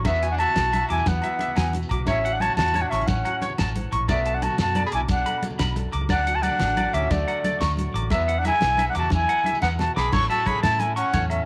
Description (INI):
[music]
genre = highlife guitar band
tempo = 119 BPM (dotted quarters)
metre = 12/8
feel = straight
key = A major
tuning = A4 = 440 Hz
[part]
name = nylon-string guitar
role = accompaniment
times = 0.0-11.5 s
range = F#2 to B4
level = -37 LUFS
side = equal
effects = none
[part]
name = vintage muted fingered electric bass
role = bass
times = 0.0-11.4 s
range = A1 to A2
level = -29 LUFS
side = equal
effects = none
[part]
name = agogo bells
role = percussion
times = 0.0-11.5 s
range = none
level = -40 LUFS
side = equal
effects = none
[part]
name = congas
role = percussion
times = 0.0-11.2 s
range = none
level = -33 LUFS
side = equal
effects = none
[part]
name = bright reedy silver concert flute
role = melody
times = 0.1-11.4 s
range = D5 to C#6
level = -26 LUFS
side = equal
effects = none
[part]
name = brilliant trumpet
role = second line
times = 0.1-11.5 s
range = A3 to A4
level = -37 LUFS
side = equal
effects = none
[part]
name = electric guitar at the edge of break-up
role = arpeggios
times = 0.1-11.3 s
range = C#5 to D6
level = -32 LUFS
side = equal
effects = tape echo
[part]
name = damped 70s drum kit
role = drums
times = 0.1-11.4 s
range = crash cymbal, hi-hat, kick drum, snare drum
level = -32 LUFS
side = equal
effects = none
[part]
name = shekere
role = percussion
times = 0.1-11.2 s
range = none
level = -38 LUFS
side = equal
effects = none
[sound]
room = light reverb, small room ambience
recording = none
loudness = -23 LUFS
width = mono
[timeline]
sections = 0.0-10.1 A section; 10.1-11.5 B section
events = drum fill 9.6-10.1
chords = 0.1 Esus2; 2.1 A6; 4.1 Bm7; 6.1 D; 8.1 Eadd9; 10.1 A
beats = | 0.06 0.56 1.07 1.57 | 2.07 2.58 3.08 3.58 | 4.08 4.59 5.09 5.60 | 6.10 6.60 7.11 7.61 | 8.12 8.62 9.12 9.63 | 10.13 10.64 11.14